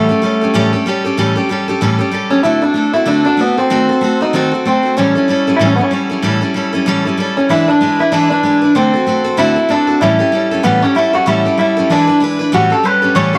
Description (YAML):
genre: rock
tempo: 190 BPM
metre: 4/4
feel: swing 59% on 8ths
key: A mixolydian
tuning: A4 = 438 Hz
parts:
  - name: electric guitar through a small old amp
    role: melody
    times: 0.0-13.4 s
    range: A3 to E5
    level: -15 LUFS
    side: equal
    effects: tape echo
  - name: picked steel-string acoustic guitar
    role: accompaniment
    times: 0.0-13.4 s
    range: A2 to B4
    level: -17 LUFS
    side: equal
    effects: none
room: light reverb, small room ambience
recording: none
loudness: -13 LUFS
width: mono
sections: 0.0-12.5 A section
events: none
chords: 0.0 A7; 2.4 D7; 3.7 D#dim7; 5.0 A7; 7.5 E7; 8.8 D7; 10.0 A7; 11.9 E7; 12.5 A7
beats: 0.23 0.55 0.86 | 1.18 1.50 1.81 2.13 | 2.45 2.76 3.08 3.39 | 3.71 4.03 4.34 4.66 | 4.97 5.29 5.60 5.92 | 6.24 6.55 6.87 7.18 | 7.50 7.81 8.13 8.44 | 8.76 9.07 9.39 9.70 | 10.02 10.33 10.65 10.96 | 11.28 11.59 11.91 12.22 | 12.54 12.85 13.16